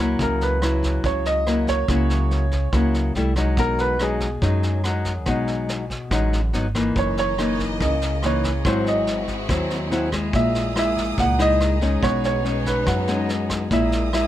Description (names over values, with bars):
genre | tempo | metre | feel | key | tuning
bossa nova | 142 BPM | 4/4 | straight | unclear | A4 = 438 Hz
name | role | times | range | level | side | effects
nylon-string guitar | accompaniment | 0.0-14.3 s | F#2 to E4 | -23 LUFS | left 2 dB | none
upright bass | bass | 0.0-14.3 s | F#1 to F#2 | -24 LUFS | right 1 dB | none
warm grand piano | melody | 0.2-14.3 s | G#4 to F#5 | -25 LUFS | right 2 dB | none
vintage brush drum kit | drums | 0.2-14.2 s | kick drum, rim click, snare drum | -28 LUFS | equal | none
rich studio violin section | sustained chords | 7.0-14.3 s | A#3 to D#6 | -32 LUFS | equal | none
room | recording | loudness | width
little or no reverb | none | -19 LUFS | side -12 dB against mid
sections
0.0-7.0 A section; 7.0-14.3 B section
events
none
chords
0.2 F#7/C#; 3.2 C6; 3.6 B6; 6.5 G#m7; 7.0 F#13; 8.7 G#7b13; 10.3 F#13/A# (rootless); 12.0 B69; 13.7 F#13/A# (rootless)